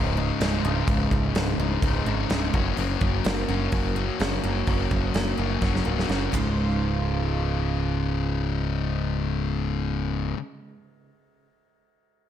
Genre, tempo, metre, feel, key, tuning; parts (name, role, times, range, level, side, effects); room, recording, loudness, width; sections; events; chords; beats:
quiet-loud alternative rock; 126 BPM; 4/4; straight; Db major; A4 = 440 Hz
picked steel-string acoustic guitar; arpeggios; 0.0-10.4 s; Db2 to F4; -30 LUFS; right 4 dB; tape echo
fuzz guitar; riff; 0.0-10.4 s; Db2 to Gb4; -28 LUFS; left 10 dB; distortion
growling picked electric bass; bass; 0.0-10.3 s; Db1 to Ab1; -27 LUFS; equal; overdrive
big rock drum kit; drums; 0.4-6.4 s; hi-hat, kick drum, ride cymbal, snare drum; -28 LUFS; right 1 dB
moderate large studio reverb, RT60 1.4 s, studio ambience; -23 LUFS; side -10 dB against mid
0.0-6.6 A section; 6.6-10.4 B section
drum fill 5.6-6.6
0.0 Dbsus2; 2.5 Gb; 6.3 Db
0.40 | 0.88 1.35 1.82 2.29 | 2.77 3.24 3.72 4.19 | 4.67 5.14 5.61 6.09 | 6.56 7.04 7.51 7.99 | 8.46 8.94 9.42 9.89